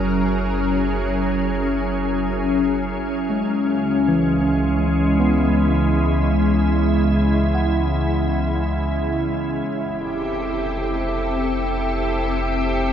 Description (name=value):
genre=ambient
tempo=free time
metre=none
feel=none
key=unclear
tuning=A4 = 441 Hz
part: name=soft additive organ-like pad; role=sustained chords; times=0.0-12.9 s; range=C#3 to A#4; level=-20 LUFS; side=left 1 dB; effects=ensemble chorus, built-in reverb
part: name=warm sub bass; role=bass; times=0.0-12.9 s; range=F1 to C#2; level=-24 LUFS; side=equal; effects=none
part: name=glass harmonica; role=texture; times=0.0-12.9 s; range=E4 to E5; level=-31 LUFS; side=right 3 dB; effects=none
part: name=tine electric piano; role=arpeggios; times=3.3-9.8 s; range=E3 to F#5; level=-24 LUFS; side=equal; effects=auto-pan, ping-pong delay
room=wet cathedral reverb, RT60 5.5 s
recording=in a vast, echoing space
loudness=-18 LUFS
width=side -9 dB against mid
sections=0.0-12.9 A section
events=fade-in on tine electric piano 0.0-12.9; fade-in on glass harmonica 0.0-12.9; filter sweep on ambient pad 0.0-12.9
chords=0.0 F#7; 3.5 C#m7; 9.7 Fmaj7